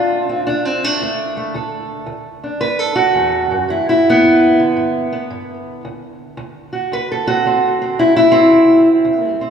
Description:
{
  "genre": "acoustic country blues, solo or duo",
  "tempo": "112 BPM",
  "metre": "4/4",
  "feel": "swing 65% on 8ths",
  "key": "D mixolydian",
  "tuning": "A4 = 440 Hz",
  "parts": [
    { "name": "fingerpicked steel-string acoustic guitar", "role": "solo", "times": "0.0-9.5 s", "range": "D2 to B4", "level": "-13 LUFS", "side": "equal", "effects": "none" }
  ],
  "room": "wet church reverb, RT60 2.7 s",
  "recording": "recorded in a church or concert hall, studio reverb",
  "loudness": "-12 LUFS",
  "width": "side -7 dB against mid",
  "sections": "0.0-9.5 A section",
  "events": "none",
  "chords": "0.0 D; 3.7 G; 5.8 D7",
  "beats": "0.46 1.00 | 1.53 2.07 2.61 3.15 | 3.69 4.23 4.76 5.30 | 5.84 6.38 6.91 7.45 | 7.98 8.52 9.05"
}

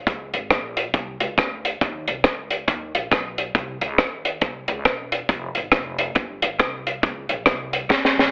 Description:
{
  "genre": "ska",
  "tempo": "138 BPM",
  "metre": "4/4",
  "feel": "swing 61% on 8ths",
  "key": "Eb mixolydian",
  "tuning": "A4 = 440 Hz",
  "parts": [
    { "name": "upright bass", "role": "bass", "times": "0.1-8.3 s", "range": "Fb1 to Eb2", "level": "-35 LUFS", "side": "equal", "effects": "none" },
    { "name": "compact cocktail drum kit", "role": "drums", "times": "0.1-8.3 s", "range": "hi-hat, kick drum, rim click, snare drum", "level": "-21 LUFS", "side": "equal", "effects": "tape echo" }
  ],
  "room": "moderate club reverb, RT60 0.6 s",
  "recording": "heavily compressed radio sound, multiband compression, telephone sound",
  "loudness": "-20 LUFS",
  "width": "side -27 dB against mid",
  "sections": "0.0-8.3 A section",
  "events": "drum fill 7.9-8.3",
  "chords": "none",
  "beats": "| 0.07 0.50 0.94 1.37 | 1.81 2.25 2.68 3.12 | 3.55 3.99 4.42 4.86 | 5.29 5.73 6.16 6.60 | 7.03 7.47 7.90"
}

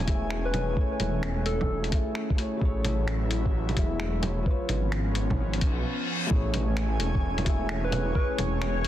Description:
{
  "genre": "future garage",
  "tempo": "130 BPM",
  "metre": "4/4",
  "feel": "swing 65% on 16ths",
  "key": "unclear",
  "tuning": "A4 = 438 Hz",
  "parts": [
    { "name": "felt-muted upright piano", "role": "accompaniment", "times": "0.0-8.9 s", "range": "A3 to E5", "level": "-34 LUFS", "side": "left 2 dB", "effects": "sidechain pumping, tape echo" },
    { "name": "airy breathy pad", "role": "sustained chords", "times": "0.0-8.9 s", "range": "E#3 to G#5", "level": "-34 LUFS", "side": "right 1 dB", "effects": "chorus, sidechain pumping" },
    { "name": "swelling detuned saw bass", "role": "bass", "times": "0.0-8.9 s", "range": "E1 to B1", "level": "-29 LUFS", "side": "equal", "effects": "sidechain pumping" },
    { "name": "lo-fi sampler-style drum kit", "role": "drums", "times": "0.0-8.9 s", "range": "bongos, finger snaps, hi-hat", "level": "-33 LUFS", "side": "right 1 dB", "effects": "soft clipping on snare" },
    { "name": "electronic kick drum", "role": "drums", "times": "0.1-8.3 s", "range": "none", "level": "-26 LUFS", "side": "equal", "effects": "none" },
    { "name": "soft struck synth lead", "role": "melody", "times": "0.5-1.9, 7.8-8.4 s", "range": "A4 to B4", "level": "-34 LUFS", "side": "left 1 dB", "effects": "chorus, tape echo" },
    { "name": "reverse cymbal", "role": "sound effects", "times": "5.6-6.3 s", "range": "none", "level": "-33 LUFS", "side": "left 3 dB", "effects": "none" },
    { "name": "backwards swelling texture", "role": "texture", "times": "7.0-8.9 s", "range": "C#5", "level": "-38 LUFS", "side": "equal", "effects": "built-in reverb" }
  ],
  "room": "light reverb, digital ambience",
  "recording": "dense, heavily limited modern master",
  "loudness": "-25 LUFS",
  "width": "side -12 dB against mid",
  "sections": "0.0-6.3 A section; 6.3-8.9 B section",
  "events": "filter sweep on felt piano 0.0-6.3; reverse cymbal 5.6-6.3",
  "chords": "0.0 Amaj7; 2.6 F#m9/A; 4.5 C#7/G#; 6.3 Amaj7",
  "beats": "0.31 | 0.77 1.23 1.69 2.15 | 2.61 3.08 3.54 4.00 | 4.46 4.92 5.38 5.84 | 6.31 6.77 7.23 7.69 | 8.15 8.61"
}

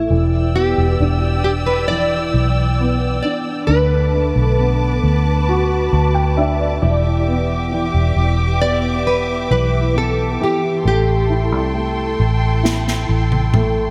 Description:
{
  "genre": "pop ballad",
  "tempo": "67 BPM",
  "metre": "4/4",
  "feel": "straight",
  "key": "E minor",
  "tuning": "A4 = 440 Hz",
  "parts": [
    { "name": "nylon-string guitar", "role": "melody", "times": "0.0-13.5 s", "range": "E4 to D5", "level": "-23 LUFS", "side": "equal", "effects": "ensemble chorus" },
    { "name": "warm upright piano", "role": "accompaniment", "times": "0.0-13.9 s", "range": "D3 to A5", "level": "-24 LUFS", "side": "equal", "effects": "ensemble chorus" },
    { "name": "vintage muted fingered electric bass", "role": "bass", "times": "0.0-13.9 s", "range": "E1 to D2", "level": "-20 LUFS", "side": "equal", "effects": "none" },
    { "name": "muted studio string section", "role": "sustained chords", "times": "0.1-13.9 s", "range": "G4 to E6", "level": "-27 LUFS", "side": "equal", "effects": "none" },
    { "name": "unplugged drum kit", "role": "drums", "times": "12.7-13.7 s", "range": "snare drum, toms", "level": "-22 LUFS", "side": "equal", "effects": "gated reverb" }
  ],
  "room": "moderate plate reverb, RT60 3.6 s",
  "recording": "bright 1980s-style digital production",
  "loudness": "-17 LUFS",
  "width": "mono",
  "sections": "0.0-13.9 A section",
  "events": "upright piano fill 5.5-7.3; drum fill 12.6-13.9",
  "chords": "0.1 Em7; 3.7 Bm7; 6.8 Em7; 10.9 Am7",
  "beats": "| 0.10 1.00 1.90 2.79 | 3.69 4.58 5.48 6.37 | 7.27 8.16 9.06 9.96 | 10.85 11.75 12.64 13.54"
}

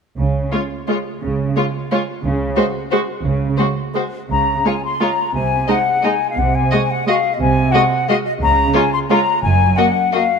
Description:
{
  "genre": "classical",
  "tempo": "161-193 BPM",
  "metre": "3/4",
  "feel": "rubato",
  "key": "Db major",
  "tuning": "A4 = 438 Hz",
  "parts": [
    { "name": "muted chamber double bass section", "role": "bass", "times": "0.2-9.7 s", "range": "Gb1 to Db2", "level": "-22 LUFS", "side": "right 3 dB", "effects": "none" },
    { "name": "muted symphonic cello section", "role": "bass", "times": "0.2-9.7 s", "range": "Gb2 to Db3", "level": "-22 LUFS", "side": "right 4 dB", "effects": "none" },
    { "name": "muted chamber violin section", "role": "melody", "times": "0.5-10.2 s", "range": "C5 to Eb5", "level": "-26 LUFS", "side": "left 4 dB", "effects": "none" },
    { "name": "muted chamber violin section", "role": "second line", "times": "0.5-10.2 s", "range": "Eb4 to Gb4", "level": "-24 LUFS", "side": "left 2 dB", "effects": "none" },
    { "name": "muted chamber viola section", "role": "accompaniment", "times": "0.5-10.2 s", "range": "Ab3 to Bb3", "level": "-22 LUFS", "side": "right 2 dB", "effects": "none" },
    { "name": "small flute group", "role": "second line", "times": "4.3-10.4 s", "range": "Eb5 to C6", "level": "-17 LUFS", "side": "left 5 dB", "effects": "none" }
  ],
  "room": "moderate scoring stage reverb, RT60 1.7 s",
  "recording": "none",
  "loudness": "-15 LUFS",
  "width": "side -6 dB against mid",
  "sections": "0.2-4.3 A section; 4.3-10.4 B section",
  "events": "none",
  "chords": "0.2 Db5; 5.3 Ab/C; 8.4 Db5; 9.4 Ebm/Gb (rootless)",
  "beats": "| 0.19 0.53 0.89 | 1.22 1.57 1.92 | 2.25 2.57 2.92 | 3.25 3.58 3.96 | 4.31 4.66 5.02 | 5.35 5.68 6.04 | 6.38 6.72 7.07 | 7.40 7.74 8.09 | 8.41 8.75 9.10 | 9.43 9.77 10.13"
}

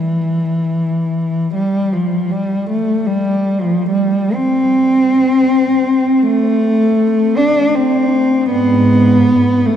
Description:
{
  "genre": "classical, free, expressive piece for unaccompanied cello",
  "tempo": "78 BPM",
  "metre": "3/4",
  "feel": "uneven beats, rubato",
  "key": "A minor from 6.3 s",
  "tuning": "A4 = 441 Hz",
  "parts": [
    { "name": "warm cello", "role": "solo", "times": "0.0-9.8 s", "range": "G#2 to D4", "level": "-12 LUFS", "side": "equal", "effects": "none" }
  ],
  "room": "wet cathedral reverb, RT60 5.6 s",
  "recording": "dark, warm production",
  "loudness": "-12 LUFS",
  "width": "side -9 dB against mid",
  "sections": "0.0-9.8 A section",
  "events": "none",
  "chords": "none",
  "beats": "0.78 | 1.55 2.31 3.08 | 3.89 4.74 5.53 | 6.26 6.98 7.75 | 8.50 9.28"
}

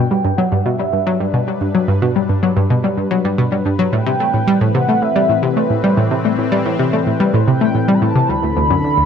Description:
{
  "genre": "ambient, sequencer-driven space music",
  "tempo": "110 BPM",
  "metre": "4/4",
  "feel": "straight",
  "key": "unclear",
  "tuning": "A4 = 440 Hz",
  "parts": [
    { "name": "mellow horn-like synth lead", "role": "melody", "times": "0.0-9.1 s", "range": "B4 to B5", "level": "-20 LUFS", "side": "right 1 dB", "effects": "phaser, analog chorus, ping-pong delay" },
    { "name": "sweeping resonant pad", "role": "sustained chords", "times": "0.0-9.1 s", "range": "D2 to B4", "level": "-22 LUFS", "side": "left 2 dB", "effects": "chorus" },
    { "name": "analog pluck", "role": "riff", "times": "0.1-9.0 s", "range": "D2 to A3", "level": "-15 LUFS", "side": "equal", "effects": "chorus, ping-pong delay" }
  ],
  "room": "moderate plate reverb, RT60 3.0 s",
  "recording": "none",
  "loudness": "-13 LUFS",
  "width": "side -7 dB against mid",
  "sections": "0.0-9.1 A section",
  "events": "fade-in on analog synth pad 0.0-9.1",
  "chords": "0.0 G; 3.9 Amadd9; 8.3 D5",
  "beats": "0.11 0.65 1.20 | 1.75 2.29 2.84 3.38 | 3.93 4.47 5.02 5.56 | 6.11 6.65 7.20 7.75 | 8.29 8.84"
}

